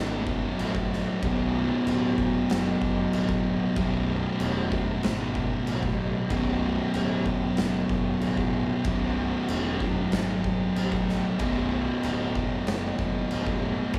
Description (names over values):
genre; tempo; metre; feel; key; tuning
stoner and doom metal; 94 BPM; 4/4; straight; B dorian; A4 = 440 Hz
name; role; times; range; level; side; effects
thick fuzz guitar; riff; 0.0-14.0 s; B1 to B2; -29 LUFS; equal; distortion
fuzz picked electric bass; bass; 0.0-14.0 s; B0 to A1; -34 LUFS; equal; overdrive
oversized low-tuned drum kit; drums; 0.3-14.0 s; crash cymbal, kick drum, snare drum; -34 LUFS; equal; none
room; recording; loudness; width
little or no reverb; small room ambience; -27 LUFS; mono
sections
0.0-14.0 A section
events
none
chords
0.0 Bm